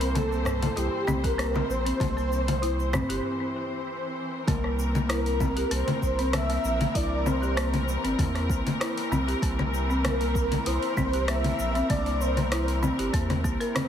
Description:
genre	organic downtempo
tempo	97 BPM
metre	4/4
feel	straight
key	C mixolydian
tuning	A4 = 442 Hz
part	breathy flute-like synth lead	melody	0.0-12.8 s	G4 to E5	-31 LUFS	equal	ensemble chorus, ping-pong delay
part	muted studio string section	sustained chords	0.0-13.9 s	E3 to C5	-33 LUFS	left 1 dB	sidechain pumping
part	folk marimba with medium hard mallets	arpeggios	0.0-13.9 s	Bb3 to Bb4	-31 LUFS	equal	ping-pong delay
part	warm sub bass	bass	0.0-13.6 s	G1 to E2	-29 LUFS	equal	none
part	deep house drum kit	drums	0.0-13.9 s	congas, hi-hat, rim click, shaker	-31 LUFS	left 2 dB	none
part	darbuka	percussion	0.0-3.1 s	none	-39 LUFS	left 2 dB	none
part	electronic kick drum	drums	1.2-13.6 s	none	-29 LUFS	equal	none
part	quartz singing bowl	texture	4.5-13.9 s	Bb3 to Bb4	-40 LUFS	left 5 dB	none
room	light reverb, studio reverb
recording	heavily compressed radio sound, multiband compression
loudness	-24 LUFS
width	side -9 dB against mid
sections	0.0-4.5 A section; 4.5-13.9 B section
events	break 3.2-4.5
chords	0.0 C7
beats	0.15 0.77 1.39 | 2.00 2.62 3.24 3.86 | 4.48 5.10 5.72 6.33 | 6.95 7.57 8.19 8.81 | 9.43 10.04 10.66 11.28 | 11.90 12.52 13.14 13.76

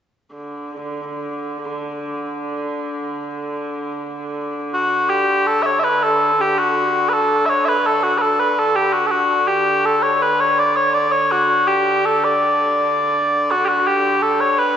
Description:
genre	medieval dance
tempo	free time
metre	none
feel	none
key	D major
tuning	A4 = 438 Hz
part	rich hurdy-gurdy	drone	0.3-14.8 s	D3	-25 LUFS	right 1 dB	none
part	mellow small bagpipes	melody	4.7-14.8 s	F#4 to E5	-15 LUFS	equal	none
room	wet church reverb, RT60 2.7 s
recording	recorded in a church or concert hall, nothing above 7.8 kHz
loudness	-16 LUFS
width	side -8 dB against mid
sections	0.3-4.7 A section; 4.7-13.5 B section; 13.5-14.8 B section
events	none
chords	none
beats	free time

